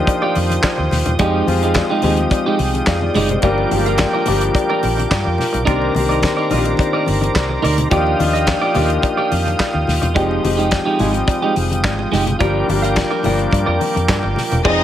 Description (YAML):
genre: disco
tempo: 107 BPM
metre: 4/4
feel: straight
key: F dorian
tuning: A4 = 438 Hz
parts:
  - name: clear grand piano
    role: accompaniment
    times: 0.0-14.8 s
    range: Eb3 to F5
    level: -20 LUFS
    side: left 4 dB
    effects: none
  - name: tonewheel organ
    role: sustained chords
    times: 0.0-14.8 s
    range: Eb3 to Eb6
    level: -22 LUFS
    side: right 2 dB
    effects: chorus vibrato, lush chorus
  - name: clean electric guitar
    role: accompaniment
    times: 0.1-14.8 s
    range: Ab3 to F5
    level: -22 LUFS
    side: right 4 dB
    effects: none
  - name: damped 70s drum kit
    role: drums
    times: 0.1-14.8 s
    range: crash cymbal, handclaps, hi-hat, kick drum, snare drum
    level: -21 LUFS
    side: equal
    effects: none
  - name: cowbell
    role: percussion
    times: 0.1-14.8 s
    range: none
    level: -30 LUFS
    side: left 6 dB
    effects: none
  - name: congas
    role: percussion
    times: 0.2-14.6 s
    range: none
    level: -27 LUFS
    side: left 4 dB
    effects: none
  - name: vintage muted fingered electric bass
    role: bass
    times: 0.4-14.8 s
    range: E1 to G2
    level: -20 LUFS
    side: right 1 dB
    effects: none
  - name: dark studio string section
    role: second line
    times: 14.6-14.8 s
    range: Eb4 to Eb5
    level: -17 LUFS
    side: left 1 dB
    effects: none
room: light reverb, studio reverb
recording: none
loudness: -14 LUFS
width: side -11 dB against mid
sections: 0.0-14.6 A section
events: none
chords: 0.0 Ebmaj9; 1.2 Fm9; 3.4 Gm7; 5.7 Cm9; 7.9 Ebmaj9; 10.2 Fm9; 12.4 Gm7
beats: 0.07 0.64 | 1.19 1.75 2.31 2.87 | 3.43 3.99 4.55 5.11 | 5.67 6.23 6.79 7.35 | 7.91 8.47 9.04 9.60 | 10.16 10.72 11.28 11.84 | 12.40 12.96 13.53 14.09 | 14.65